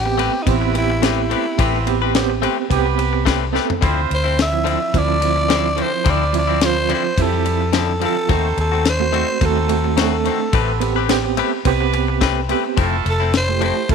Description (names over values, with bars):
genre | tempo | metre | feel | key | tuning
straight-eighth soul blues | 107 BPM | 4/4 | swing 55% on 16ths | A minor | A4 = 441 Hz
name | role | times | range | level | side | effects
growling tenor saxophone | melody | 0.0-13.9 s | D#4 to E5 | -21 LUFS | equal | none
vintage muted fingered electric bass | bass | 0.0-13.9 s | F1 to F2 | -21 LUFS | left 1 dB | none
overdriven reed electric piano | accompaniment | 0.1-13.9 s | F3 to A4 | -22 LUFS | right 16 dB | fast tremolo
direct-recorded clean electric guitar | stabs | 0.1-13.8 s | D3 to B4 | -24 LUFS | left 14 dB | spring reverb
tight funk drum kit | drums | 0.2-13.9 s | kick drum, ride cymbal, snare drum, toms | -23 LUFS | left 4 dB | none
brilliant horn section | sustained chords | 0.5-13.9 s | G3 to C5 | -28 LUFS | right 12 dB | none
room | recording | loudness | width
light reverb, small room ambience | 1960s-style stereo with parts hard left and right | -15 LUFS | side -6 dB against mid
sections
0.0-13.9 A section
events
drum fill 3.5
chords
0.0 Am9; 3.8 Dm9; 8.3 D#dim7; 10.5 Am9; 12.8 Fmaj7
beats
0.47 1.03 | 1.59 2.15 2.71 3.27 | 3.83 4.38 4.94 5.50 | 6.06 6.62 7.18 7.74 | 8.30 8.86 9.42 9.98 | 10.54 11.10 11.66 12.22 | 12.78 13.34 13.89